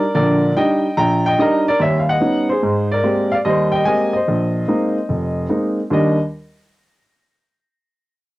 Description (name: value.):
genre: jazz.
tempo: 146 BPM.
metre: 4/4.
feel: swing 67% on 8ths.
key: Eb major.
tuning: A4 = 436 Hz.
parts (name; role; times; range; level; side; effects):
warm baby grand piano; solo; 0.0-6.2 s; F1 to Bb5; -15 LUFS; equal; none.
room: wet booth ambience, RT60 0.2 s.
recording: home recording on cassette.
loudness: -15 LUFS.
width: side -18 dB against mid.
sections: 0.0-2.6 A section; 2.6-5.9 B section; 5.9-7.6 C section.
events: none.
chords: 0.0 Ebmaj7; 1.8 Eb7alt; 2.6 Abmaj9; 4.3 Bb9sus4; 5.9 Ebmaj7.